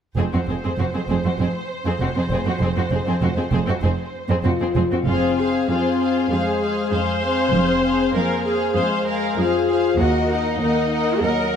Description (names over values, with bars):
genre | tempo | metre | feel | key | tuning
cinematic | 98 BPM | 4/4 | straight | F phrygian | A4 = 440 Hz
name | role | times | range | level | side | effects
clear symphonic violin section | melody | 0.2-11.6 s | C5 to Gb5 | -30 LUFS | left 2 dB | none
warm symphonic violin section | second line | 0.2-11.6 s | Gb4 to Eb5 | -26 LUFS | left 2 dB | none
rich symphonic viola section | accompaniment | 0.2-11.6 s | C4 to C5 | -25 LUFS | right 1 dB | none
rich symphonic double bass section | bass | 0.2-10.5 s | F1 to Eb2 | -25 LUFS | right 3 dB | none
warm symphonic cello section | bass | 0.2-11.6 s | Eb2 to F2 | -24 LUFS | right 2 dB | none
mellow French horn section | sustained chords | 4.4-11.6 s | Gb3 to F4 | -22 LUFS | left 5 dB | none
room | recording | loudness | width
moderate scoring stage reverb, RT60 1.5 s | none | -18 LUFS | side -8 dB against mid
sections
0.2-5.1 A section; 5.1-11.6 B section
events
none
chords
0.2 Fm; 10.0 Ebm